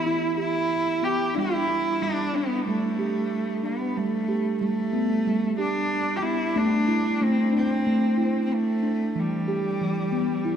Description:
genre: world meditative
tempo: 92 BPM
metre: 4/4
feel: swing 53% on 16ths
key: G major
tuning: A4 = 442 Hz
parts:
  - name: dark cello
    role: melody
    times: 0.0-10.6 s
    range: G3 to G4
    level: -26 LUFS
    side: right 1 dB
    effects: diffuse ambient delay
  - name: steel tongue drum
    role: arpeggios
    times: 0.0-10.6 s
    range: E3 to G4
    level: -25 LUFS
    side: equal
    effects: none
room: wet echo chamber reverb, RT60 2.3 s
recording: none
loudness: -22 LUFS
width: side -8 dB against mid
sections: 0.0-10.6 A section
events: none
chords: 0.0 Em; 1.4 G; 6.6 Am; 9.2 Em

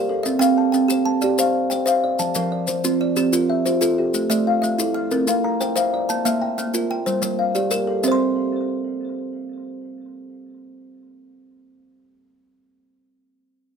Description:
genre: southern african traditional, mbira-style interlocking cycle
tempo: 123 BPM (dotted quarters)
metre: 12/8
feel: straight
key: C mixolydian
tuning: A4 = 440 Hz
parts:
  - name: kalimba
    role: arpeggios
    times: 0.0-12.7 s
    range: F3 to C6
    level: -22 LUFS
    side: left 2 dB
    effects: tape echo
  - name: kalimba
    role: arpeggios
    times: 0.0-12.7 s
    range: F3 to C6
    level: -22 LUFS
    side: right 4 dB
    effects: none
  - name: maracas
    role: percussion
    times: 0.3-8.2 s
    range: none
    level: -27 LUFS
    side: left 5 dB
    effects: none
room: light reverb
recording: close, detailed microphones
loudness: -18 LUFS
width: side -6 dB against mid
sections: 0.0-8.0 A section; 8.0-11.9 B section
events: none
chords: 0.2 C; 2.2 F; 4.1 A5; 5.1 C; 6.1 Bb; 7.1 Gm; 8.0 N.C.

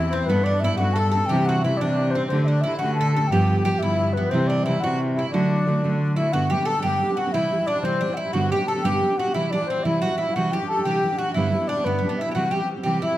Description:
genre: celtic folk, Celtic jig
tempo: 119 BPM (dotted quarters)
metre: 6/8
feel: straight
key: unclear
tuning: A4 = 440 Hz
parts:
  - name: baroque flute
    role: melody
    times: 0.0-13.2 s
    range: B4 to A5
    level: -25 LUFS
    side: left 2 dB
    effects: none
  - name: Irish bouzouki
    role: second line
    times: 0.0-13.2 s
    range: B3 to A4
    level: -29 LUFS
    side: right 2 dB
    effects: none
  - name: accordion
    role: second line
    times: 0.0-13.2 s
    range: B3 to B4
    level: -31 LUFS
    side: left 3 dB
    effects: light tremolo tuning
  - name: fingerpicked steel-string acoustic guitar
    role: accompaniment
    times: 0.0-13.2 s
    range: G2 to A4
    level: -25 LUFS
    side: right 2 dB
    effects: none
  - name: muted cello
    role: bass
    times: 0.0-6.3 s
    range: E2 to D3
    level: -23 LUFS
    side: left 1 dB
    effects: none
room: moderate recital hall reverb, RT60 1.7 s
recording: none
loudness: -20 LUFS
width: side -14 dB against mid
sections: 0.0-6.3 A section; 6.3-13.2 B section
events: none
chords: 0.3 Gadd9; 1.3 Cadd9; 2.3 Dsus4; 3.3 G7; 4.3 C; 5.3 D; 6.3 G; 7.3 C; 8.3 G; 9.3 C; 10.3 Cadd9; 11.4 G; 12.4 C

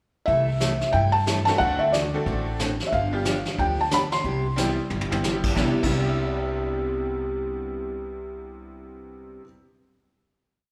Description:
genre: country, western swing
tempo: 181 BPM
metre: 4/4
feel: swing 62% on 8ths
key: C major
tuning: A4 = 441 Hz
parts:
  - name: felt-muted upright piano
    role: melody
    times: 0.3-5.2 s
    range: D5 to C6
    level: -26 LUFS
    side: equal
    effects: none
  - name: picked steel-string acoustic guitar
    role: accompaniment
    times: 0.3-9.4 s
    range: C3 to A4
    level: -32 LUFS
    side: equal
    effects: none
  - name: upright bass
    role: bass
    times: 0.3-9.4 s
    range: G1 to G2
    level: -31 LUFS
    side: equal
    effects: none
  - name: vintage brush drum kit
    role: drums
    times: 0.3-5.9 s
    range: brushed snare drum, crash cymbal, hi-hat, kick drum, snare drum, toms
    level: -32 LUFS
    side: equal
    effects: none
  - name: tack piano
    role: accompaniment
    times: 1.5-9.4 s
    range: C3 to A4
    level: -34 LUFS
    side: equal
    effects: none
room: wet large studio reverb, RT60 1.4 s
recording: band playing live in one room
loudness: -24 LUFS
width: mono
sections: 0.3-5.6 A section; 5.6-8.2 final chord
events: drum fill 4.9-5.2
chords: 0.3 C6; 1.6 D7; 2.9 G7; 4.2 Cmaj7

